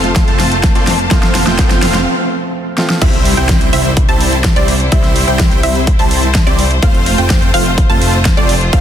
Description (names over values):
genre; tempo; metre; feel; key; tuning
EDM, festival progressive house; 126 BPM; 4/4; straight; C major; A4 = 440 Hz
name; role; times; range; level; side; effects
warm grand piano; accompaniment; 0.0-3.0 s; F3 to F4; -21 LUFS; right 1 dB; sidechain pumping, ping-pong delay
clear studio string section; sustained chords; 0.0-8.8 s; G3 to A5; -22 LUFS; left 3 dB; sidechain pumping
dense compressed supersaw; riff; 0.0-8.8 s; G3 to A5; -16 LUFS; right 1 dB; sidechain pumping, ping-pong delay
fat analog bass; bass; 0.0-8.8 s; F1 to C2; -17 LUFS; equal; sidechain pumping
big-room dance drum kit; drums; 0.0-8.8 s; crash cymbal, hi-hat, snare drum; -18 LUFS; equal; overdrive
riser and impact; sound effects; 0.1-4.9 s; none; -22 LUFS; right 1 dB; none
electronic kick drum; drums; 0.2-8.8 s; none; -12 LUFS; equal; overdrive
wide unison pluck; arpeggios; 3.0-8.8 s; D5 to A5; -20 LUFS; right 1 dB; vintage 12-bit sampler grit, sidechain pumping, ping-pong delay
room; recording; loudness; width
light reverb; dense, heavily limited modern master; -9 LUFS; side -10 dB against mid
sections
0.0-3.0 A section; 3.0-8.8 B section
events
build-up 0.0-3.0; drum fill 0.0-2.1, 2.8; riser 0.1-2.1; break 2.1-3.0; drop 3.0-8.8; impact 3.0-4.9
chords
0.0 F; 3.0 C; 6.8 F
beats
0.16 0.64 | 1.11 1.59 2.06 2.54 | 3.02 3.49 3.97 4.44 | 4.92 5.40 5.87 6.35 | 6.83 7.30 7.78 8.25 | 8.73